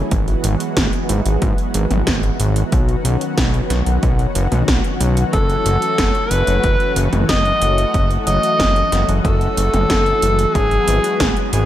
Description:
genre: synthwave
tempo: 92 BPM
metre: 4/4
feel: straight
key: F# dorian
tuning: A4 = 437 Hz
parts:
  - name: analog string pad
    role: sustained chords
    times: 0.0-11.7 s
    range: D#3 to F#4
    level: -23 LUFS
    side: left 1 dB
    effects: ensemble chorus, sidechain pumping, shimmer reverb
  - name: fat analog bass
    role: bass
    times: 0.0-11.6 s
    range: F#1 to B1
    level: -18 LUFS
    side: equal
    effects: sidechain pumping
  - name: 80s electronic pad drums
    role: drums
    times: 0.1-11.7 s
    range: hi-hat, snare drum, toms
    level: -22 LUFS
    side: right 1 dB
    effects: gated reverb on snare and toms, overdrive
  - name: electronic kick drum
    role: drums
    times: 0.1-11.3 s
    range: none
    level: -20 LUFS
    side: equal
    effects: overdrive
  - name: bright alto saxophone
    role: melody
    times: 5.3-11.7 s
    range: G#4 to D#5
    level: -18 LUFS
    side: equal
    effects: vintage 12-bit sampler grit, tape echo, shimmer reverb
room: light reverb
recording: none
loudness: -14 LUFS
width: side -12 dB against mid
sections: 0.0-11.7 A section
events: none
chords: 0.1 Eadd9/G#; 2.7 Badd9; 5.3 F#m7; 10.6 Eadd9/G#

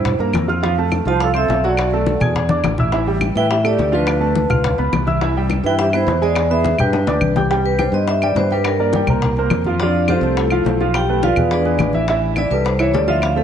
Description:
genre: Afro-Cuban jazz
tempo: 210 BPM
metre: 4/4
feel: straight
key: A minor, C major from 7.5 s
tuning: A4 = 440 Hz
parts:
  - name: vibraphone with medium hard mallets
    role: melody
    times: 0.0-13.4 s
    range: A3 to A5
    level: -21 LUFS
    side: left 1 dB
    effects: analog delay
  - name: hollow concert flute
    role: second line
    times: 0.0-7.3 s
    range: D4 to C5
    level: -26 LUFS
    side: right 6 dB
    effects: none
  - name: warm concert grand piano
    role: accompaniment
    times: 0.0-13.4 s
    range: E3 to G#6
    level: -20 LUFS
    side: right 3 dB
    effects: analog chorus
  - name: modern bright fingered electric bass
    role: bass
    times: 0.0-13.4 s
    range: A1 to A2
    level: -20 LUFS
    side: equal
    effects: none
  - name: bongos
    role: percussion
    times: 0.1-13.4 s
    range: none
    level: -26 LUFS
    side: left 7 dB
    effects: none
  - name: congas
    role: percussion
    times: 0.1-13.4 s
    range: none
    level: -24 LUFS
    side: left 2 dB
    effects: none
  - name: claves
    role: percussion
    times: 0.3-13.4 s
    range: none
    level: -28 LUFS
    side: equal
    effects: none
room: moderate plate reverb, RT60 2.9 s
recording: dreamy mix soaked in reverb, nothing above 10.8 kHz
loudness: -15 LUFS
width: side -8 dB against mid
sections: 0.0-7.5 A section; 7.5-13.4 B section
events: drum fill 2.5-2.9, 6.9-7.5; vibraphone solo 7.5-13.4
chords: 0.0 C7; 0.6 F; 1.8 Bm7; 2.3 E7; 2.9 A5; 4.1 Dm; 4.6 C#7; 5.2 Cmaj7; 6.4 E; 6.9 G; 7.5 C5; 8.6 Gm; 9.2 C7sus4; 9.8 Fmaj9; 10.9 Bm7b5; 11.5 E7; 12.1 Am7

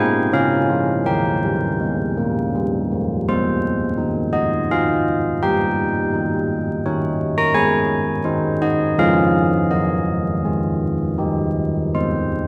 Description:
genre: classical, tune for church bells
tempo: 83 BPM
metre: 3/4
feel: straight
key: Ab major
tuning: A4 = 440 Hz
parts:
  - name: carillon bells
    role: solo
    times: 0.0-12.5 s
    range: Eb3 to Bb5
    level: -19 LUFS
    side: equal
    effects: none
room: moderate scoring stage reverb, RT60 1.8 s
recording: vinyl crackle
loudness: -20 LUFS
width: mono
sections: 0.0-3.3 A section; 3.3-12.5 B section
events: none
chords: 0.3 Bbm/Db; 1.1 Eb; 3.3 Ab; 5.4 Eb7/G; 7.6 Ab; 9.0 Db/F; 9.7 Ab/Eb; 11.2 Eb; 11.9 Ab

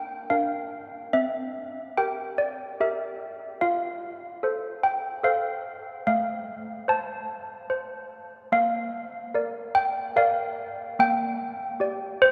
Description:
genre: classical, tune for handbells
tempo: 73 BPM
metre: 3/4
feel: straight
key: F major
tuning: A4 = 439 Hz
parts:
  - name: malleted handbells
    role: solo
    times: 0.0-12.3 s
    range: A3 to A5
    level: -27 LUFS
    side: equal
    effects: none
room: wet cathedral reverb, RT60 4.7 s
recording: none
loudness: -27 LUFS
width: mono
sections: 0.0-12.3 A section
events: none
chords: 0.0 Bb; 1.1 C7; 3.6 F; 6.1 F/A; 8.5 Bb; 11.0 Gm/Bb

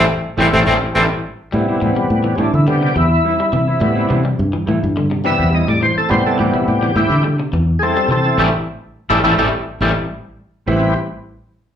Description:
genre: afrobeat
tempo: 105 BPM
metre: 4/4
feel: straight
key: A minor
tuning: A4 = 440 Hz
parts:
  - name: breathy trumpet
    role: melody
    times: 0.0-1.0 s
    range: C4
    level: -17 LUFS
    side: equal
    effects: slapback echo
  - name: raspy tenor saxophone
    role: second line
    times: 0.0-1.0 s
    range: C3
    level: -22 LUFS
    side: right 1 dB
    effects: slapback echo
  - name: overdriven tonewheel organ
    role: accompaniment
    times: 0.0-10.9 s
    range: C3 to E5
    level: -17 LUFS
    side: equal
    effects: chorus vibrato, slow rotary speaker, slapback echo
  - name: electric guitar at the edge of break-up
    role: arpeggios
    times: 0.0-10.9 s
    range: A2 to A3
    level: -21 LUFS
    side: left 4 dB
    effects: slapback echo
  - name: mellow electric guitar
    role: stabs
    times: 0.0-10.9 s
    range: G3 to E4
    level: -24 LUFS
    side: right 4 dB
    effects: slapback echo
  - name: fingered electric bass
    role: bass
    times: 0.0-10.9 s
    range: A1 to D3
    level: -17 LUFS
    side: equal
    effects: none
room: moderate club reverb, RT60 0.8 s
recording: live gig heard through the venue's PA, club reverb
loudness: -13 LUFS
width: side -9 dB against mid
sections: 0.0-1.5 A section; 1.5-10.7 B section; 10.7-11.8 C section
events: band accent 0.0-1.5, 8.4-10.7; tonewheel organ solo 1.5-10.7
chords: 0.0 Am7

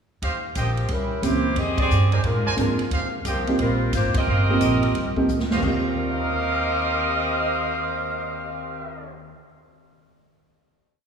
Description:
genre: jazz, big band swing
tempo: 178 BPM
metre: 4/4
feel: swing 64% on 8ths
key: Eb major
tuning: A4 = 440 Hz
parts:
  - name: clear trumpet section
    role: stabs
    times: 0.2-9.1 s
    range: G4 to Ab5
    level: -29 LUFS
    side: right 1 dB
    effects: none
  - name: upright bass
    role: bass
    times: 0.2-9.3 s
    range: G1 to Bb2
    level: -25 LUFS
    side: right 1 dB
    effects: none
  - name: swinging big-band drum kit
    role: drums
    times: 0.2-8.2 s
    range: crash cymbal, cymbal swell, hi-hat, kick drum, ride cymbal, snare drum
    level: -30 LUFS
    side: right 1 dB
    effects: none
  - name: warm saxophone section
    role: melody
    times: 0.6-9.1 s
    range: F3 to Eb5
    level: -25 LUFS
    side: equal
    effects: none
  - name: warm baby grand piano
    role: accompaniment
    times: 1.2-10.1 s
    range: Eb2 to Bb6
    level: -26 LUFS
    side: right 2 dB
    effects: none
room: wet church reverb, RT60 2.4 s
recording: recorded in a church or concert hall, small room ambience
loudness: -20 LUFS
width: side -6 dB against mid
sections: 0.2-5.6 A section; 5.6-8.3 final chord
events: band accent 1.7, 4.1; drum fill 5.3-5.6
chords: 0.2 Eb69; 0.9 C7b9; 1.6 Fm9; 2.2 Bb9; 2.9 Eb69

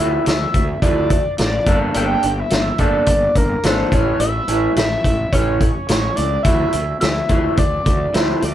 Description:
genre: indie rock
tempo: 107 BPM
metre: 4/4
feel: straight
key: D minor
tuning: A4 = 440 Hz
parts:
  - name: overdriven synth lead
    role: melody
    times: 0.0-8.5 s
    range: Bb4 to G5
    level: -21 LUFS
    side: equal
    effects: distortion, phaser
  - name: electric guitar through a small old amp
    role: riff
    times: 0.0-8.5 s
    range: E3 to A4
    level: -21 LUFS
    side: right 1 dB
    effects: none
  - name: fuzz fingered electric bass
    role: bass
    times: 0.0-8.5 s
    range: G1 to D2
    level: -22 LUFS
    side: equal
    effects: overdrive
  - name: vintage drum kit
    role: drums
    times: 0.3-8.5 s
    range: hi-hat, kick drum, snare drum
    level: -19 LUFS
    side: equal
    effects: none
room: moderate studio reverb, RT60 0.5 s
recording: band playing live in one room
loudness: -15 LUFS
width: side -11 dB against mid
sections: 0.0-8.5 A section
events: none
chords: 0.0 Dmadd9; 1.7 Gmadd9; 3.9 A; 6.5 Dmadd9

